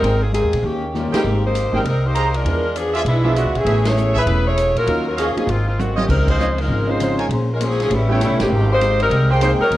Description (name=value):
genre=jazz, big band swing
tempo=198 BPM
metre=4/4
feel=swing 62% on 8ths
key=Ab major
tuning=A4 = 440 Hz
part: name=clear saxophone section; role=melody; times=0.0-9.8 s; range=D3 to C#5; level=-20 LUFS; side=left 1 dB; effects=plate reverb
part: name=clear concert grand piano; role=accompaniment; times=0.0-9.6 s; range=F3 to G#4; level=-24 LUFS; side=right 1 dB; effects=none
part: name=hollow-body jazz guitar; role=accompaniment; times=0.0-1.1, 6.1-9.8 s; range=Db3 to C5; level=-25 LUFS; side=left 3 dB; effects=none
part: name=clear trumpet section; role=stabs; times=0.0-9.7 s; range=F4 to Bb5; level=-24 LUFS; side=right 3 dB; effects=none
part: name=upright bass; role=bass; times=0.0-9.8 s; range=E1 to Bb2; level=-20 LUFS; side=equal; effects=none
part: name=swinging big-band drum kit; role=drums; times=0.0-9.8 s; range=crash cymbal, hi-hat, kick drum, ride cymbal, snare drum, toms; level=-28 LUFS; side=equal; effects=none
room=moderate large studio reverb, RT60 1.0 s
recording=worn, warbling old tape, cassette tape, warbly pitch drift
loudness=-16 LUFS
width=side -15 dB against mid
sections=0.0-1.2 A section; 1.2-9.8 A section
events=drum fill 0.9-1.2, 5.8-6.1; band accent 1.1, 3.8, 6.2, 8.4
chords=0.0 Abmaj9; 0.6 Eb7; 1.2 Abmaj9; 2.5 E7b9; 3.7 Amaj7; 4.9 Ebm9; 5.5 Ab69; 6.1 Dbmaj9; 7.3 Bbm9; 7.9 A9; 8.5 Abmaj9